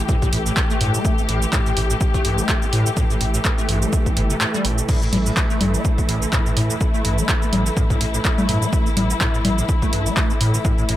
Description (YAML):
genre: acid house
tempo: 125 BPM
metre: 4/4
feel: swing 56% on 16ths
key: unclear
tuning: A4 = 439 Hz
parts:
  - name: muted studio string section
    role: sustained chords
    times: 0.0-11.0 s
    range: E3 to G4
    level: -24 LUFS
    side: left 1 dB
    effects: sidechain pumping
  - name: saturated sub bass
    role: bass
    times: 0.0-11.0 s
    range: G1 to A2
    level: -22 LUFS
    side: equal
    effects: tube saturation, sidechain pumping
  - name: acid bass, square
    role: riff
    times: 0.1-10.9 s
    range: G2 to C4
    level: -25 LUFS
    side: equal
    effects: ensemble chorus, tape echo
  - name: electronic kick drum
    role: drums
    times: 0.1-10.8 s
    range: none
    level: -20 LUFS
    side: equal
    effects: none
  - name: punchy analog drum machine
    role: drums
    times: 0.1-11.0 s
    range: congas, crash cymbal, handclaps, hi-hat, shaker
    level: -24 LUFS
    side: equal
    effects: none
room: light reverb, digital ambience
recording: none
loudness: -17 LUFS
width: side -13 dB against mid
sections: 0.0-11.0 A section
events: kick drops out 4.4-4.9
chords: 0.0 A5